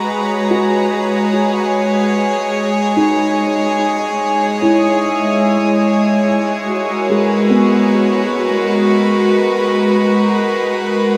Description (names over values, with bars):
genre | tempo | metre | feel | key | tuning
ambient | 73 BPM | 4/4 | straight | G# minor | A4 = 440 Hz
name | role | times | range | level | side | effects
rich chamber string section | sustained chords | 0.0-11.2 s | G#3 to A#5 | -16 LUFS | equal | none
felt-muted upright piano | arpeggios | 0.0-11.2 s | G#3 to F#4 | -22 LUFS | equal | tape echo
bowed-like drone | drone | 0.0-6.3 s | G#3 to D#5 | -30 LUFS | equal | none
room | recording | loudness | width
wet shimmer reverb, RT60 8.3 s | none | -15 LUFS | mono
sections
0.0-6.3 A section; 6.3-11.2 B section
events
none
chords
0.0 C#m/G#